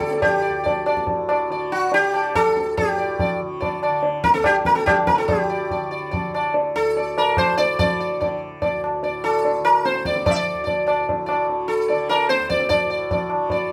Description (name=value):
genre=indian classical, Hindustani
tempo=145 BPM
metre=3/4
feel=straight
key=unclear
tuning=A4 = 440 Hz
part: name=sitar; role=melody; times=0.0-13.7 s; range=F#4 to E5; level=-23 LUFS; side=equal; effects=none
part: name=tanpura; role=drone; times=0.0-13.7 s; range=D2 to D3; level=-33 LUFS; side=equal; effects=none
part: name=tabla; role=percussion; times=0.0-13.7 s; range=none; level=-25 LUFS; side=equal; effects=none
room=wet studio reverb, RT60 0.6 s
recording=heard from further back in the room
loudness=-21 LUFS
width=mono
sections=0.0-5.3 A section; 5.3-13.7 B section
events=speeding up 0.0-13.7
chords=none